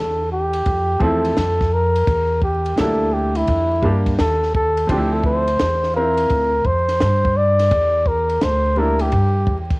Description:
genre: hip hop, jazz-hop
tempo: 85 BPM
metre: 4/4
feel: swing 66% on 16ths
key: D minor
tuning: A4 = 440 Hz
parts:
  - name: trumpet with bucket mute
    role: melody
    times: 0.0-9.6 s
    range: E4 to D5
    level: -18 LUFS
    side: equal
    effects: cassette tape
  - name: upright bass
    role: bass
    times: 0.0-9.8 s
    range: D2 to G2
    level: -21 LUFS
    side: equal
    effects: none
  - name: compact cocktail drum kit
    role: drums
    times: 0.5-9.8 s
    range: hi-hat, kick drum, ride cymbal, snare drum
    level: -24 LUFS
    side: equal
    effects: cassette tape
  - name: clear upright piano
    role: accompaniment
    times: 1.0-9.1 s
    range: F3 to G4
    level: -24 LUFS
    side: right 1 dB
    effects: cassette tape
room: light reverb, small room ambience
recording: home recording on cassette, vinyl crackle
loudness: -15 LUFS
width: side -25 dB against mid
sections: 0.0-9.8 A section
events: none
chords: 0.0 Dm9 (rootless); 2.1 Em7b5; 4.9 Dm9; 7.7 Em7b5

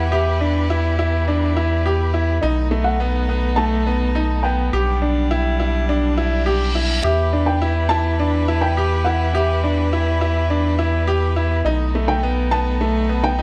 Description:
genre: piano and strings electronica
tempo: 104 BPM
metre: 4/4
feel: straight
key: E minor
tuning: A4 = 440 Hz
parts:
  - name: felt-muted upright piano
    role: melody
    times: 0.0-13.4 s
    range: D#5 to A5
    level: -27 LUFS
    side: equal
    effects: none
  - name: rich string quartet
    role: sustained chords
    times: 0.0-13.4 s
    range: E3 to B4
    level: -30 LUFS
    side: equal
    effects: none
  - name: clear grand piano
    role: riff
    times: 0.0-13.4 s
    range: A3 to G4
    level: -24 LUFS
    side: equal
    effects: delay
  - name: round analog bass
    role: bass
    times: 0.0-13.4 s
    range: B1 to E2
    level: -22 LUFS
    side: equal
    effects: tube saturation
  - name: reverse cymbal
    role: sound effects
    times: 6.1-7.0 s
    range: none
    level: -30 LUFS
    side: equal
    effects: none
room: light reverb, small room reverb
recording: none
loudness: -19 LUFS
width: mono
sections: 0.0-13.4 A section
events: reverse cymbal 6.1-7.0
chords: 0.0 Em; 2.4 B7; 4.7 G/B; 7.0 Em; 11.7 B7

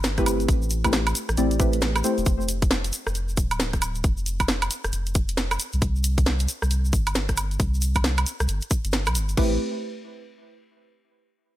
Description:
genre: UK garage, two-step garage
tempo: 135 BPM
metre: 4/4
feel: swing 62% on 16ths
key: A minor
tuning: A4 = 440 Hz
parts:
  - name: soft dub sub bass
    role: bass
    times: 0.0-9.6 s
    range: D1 to C2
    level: -25 LUFS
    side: equal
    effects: none
  - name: garage drum kit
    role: drums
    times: 0.0-9.5 s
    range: crash cymbal, hi-hat, rim click, snare drum, woodblock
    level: -26 LUFS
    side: right 1 dB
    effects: none
  - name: egg shaker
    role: percussion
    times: 0.0-9.4 s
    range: none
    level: -34 LUFS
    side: left 1 dB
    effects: none
  - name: deep mellow chord stab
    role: stabs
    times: 0.2-2.1, 9.4-9.5 s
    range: A3 to D5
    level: -26 LUFS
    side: equal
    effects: chorus, digital delay
  - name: electronic kick drum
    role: drums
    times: 0.2-9.5 s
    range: none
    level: -23 LUFS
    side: equal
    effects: none
room: digital ambience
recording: none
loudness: -21 LUFS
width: side -14 dB against mid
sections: 0.0-9.4 A section; 9.4-11.2 B section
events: none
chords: 0.0 Am9; 2.3 Dm; 5.6 C5; 9.4 Am9

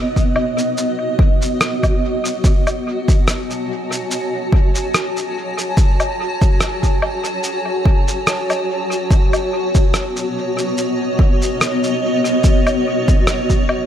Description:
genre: ambient dub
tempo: 72 BPM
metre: 4/4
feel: swing 54% on 16ths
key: unclear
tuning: A4 = 443 Hz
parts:
  - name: granular cloud pad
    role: sustained chords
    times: 0.0-13.9 s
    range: B3 to A5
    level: -19 LUFS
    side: equal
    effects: built-in reverb
  - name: electronic cabasa, woodblock and rim click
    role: drums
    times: 0.2-13.9 s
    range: none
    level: -22 LUFS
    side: equal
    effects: studio reverb, dub echo
  - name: electronic kick drum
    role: drums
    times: 0.2-13.7 s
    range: none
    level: -15 LUFS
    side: equal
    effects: studio reverb
room: light reverb, digital ambience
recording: none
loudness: -15 LUFS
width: side -10 dB against mid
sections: 0.0-13.9 A section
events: none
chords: 0.0 B7

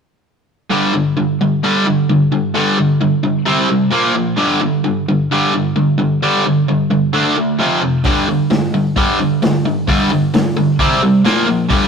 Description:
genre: garage rock duo or trio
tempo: 131 BPM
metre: 4/4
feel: straight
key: unclear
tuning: A4 = 440 Hz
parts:
  - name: cranked stack guitar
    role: riff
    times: 0.7-11.9 s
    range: F2 to D4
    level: -13 LUFS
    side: equal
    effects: overdrive
  - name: vintage drum kit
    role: drums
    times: 8.0-11.8 s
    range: hi-hat, kick drum, snare drum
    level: -18 LUFS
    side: left 1 dB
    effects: none
room: wet stone room reverb, RT60 1.2 s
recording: rough rehearsal-room recording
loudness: -12 LUFS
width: side -6 dB against mid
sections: 0.7-11.9 A section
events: none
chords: 0.7 G5; 3.5 C5; 3.9 Bb5; 4.4 G5; 7.1 D5; 7.6 F5; 8.1 G5; 10.8 C5; 11.2 Bb5

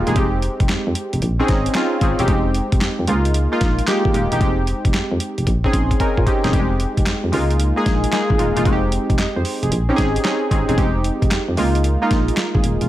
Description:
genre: R&B, new jack swing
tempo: 113 BPM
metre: 4/4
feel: swing 66% on 16ths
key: F minor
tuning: A4 = 439 Hz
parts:
  - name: warm analog keys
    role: accompaniment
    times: 0.0-12.9 s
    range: G3 to C6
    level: -20 LUFS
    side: equal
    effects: chorus
  - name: solid FM bass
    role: bass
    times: 0.0-12.9 s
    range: Eb1 to Bb2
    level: -21 LUFS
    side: equal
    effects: none
  - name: dusty soul sampler-style drum kit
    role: drums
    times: 0.1-12.9 s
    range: handclaps, hi-hat, kick drum, snare drum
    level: -20 LUFS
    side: equal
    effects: none
room: little or no reverb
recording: none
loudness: -16 LUFS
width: side -14 dB against mid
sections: 0.0-12.9 A section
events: synth keys fill 1.2-2.3, 5.5-6.5; drum fill 5.5-6.5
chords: 0.2 Fm9; 1.2 Bbm11; 2.3 Fm9; 3.1 Db69; 4.4 Fm9; 5.5 Bbm11; 6.5 Fm9; 7.3 Db69; 8.7 Fm9; 9.7 Bbm11; 10.8 Fm9; 11.6 Db69

